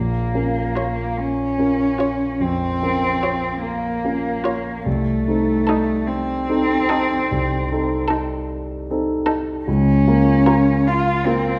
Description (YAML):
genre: classical, slow romantic movement for piano quartet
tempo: 49 BPM (dotted quarters)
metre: 12/8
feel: rubato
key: Bb minor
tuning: A4 = 440 Hz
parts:
  - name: dark cello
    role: second line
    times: 0.0-11.6 s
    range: A3 to F4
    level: -23 LUFS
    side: equal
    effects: none
  - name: dark concert grand piano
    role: accompaniment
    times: 0.0-11.6 s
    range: Bb1 to Bb4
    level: -23 LUFS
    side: equal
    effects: none
  - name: rich violin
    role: melody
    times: 0.8-10.8 s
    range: A4 to Db5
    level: -29 LUFS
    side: equal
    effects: none
  - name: warm viola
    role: accompaniment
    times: 0.8-10.8 s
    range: Eb4 to F4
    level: -30 LUFS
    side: equal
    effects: none
room: moderate concert hall reverb, RT60 1.9 s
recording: none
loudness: -20 LUFS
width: mono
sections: 0.0-11.6 A section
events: none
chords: 0.0 Bbm; 4.9 Adim/C; 9.7 Bbm/Db